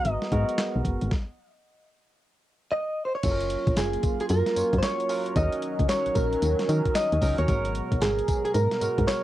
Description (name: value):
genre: R&B, new jack swing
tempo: 113 BPM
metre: 4/4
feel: swing 63% on 16ths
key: unclear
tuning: A4 = 440 Hz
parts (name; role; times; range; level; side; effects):
- direct-recorded clean electric guitar; melody; 0.0-9.2 s; Ab4 to Eb5; -27 LUFS; right 1 dB; lush chorus, cassette tape
- barky tine electric piano; accompaniment; 0.0-9.2 s; Gb3 to Db5; -33 LUFS; right 3 dB; lush chorus, cassette tape
- sweeping resonant pad; sustained chords; 0.0-9.2 s; Cb3 to Bb5; -35 LUFS; equal; chorus, cassette tape
- solid FM bass; bass; 0.1-9.1 s; Gb1 to Eb3; -26 LUFS; equal; none
- dusty soul sampler-style drum kit; drums; 0.1-9.2 s; crash cymbal, handclaps, hi-hat, kick drum, snare drum, tambourine; -28 LUFS; equal; cassette tape
room: light reverb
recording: home recording on cassette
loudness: -23 LUFS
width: side -14 dB against mid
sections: 0.0-3.2 A section; 3.2-9.2 B section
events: stop 1.1-3.2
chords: 0.0 Abm9; 1.1 N.C.; 3.2 Gbmaj7; 5.4 Ebm7; 7.5 Abm9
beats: 0.05 0.58 | 1.11 1.64 2.17 2.71 | 3.24 3.77 4.30 4.83 | 5.36 5.89 6.42 6.95 | 7.48 8.02 8.55 9.08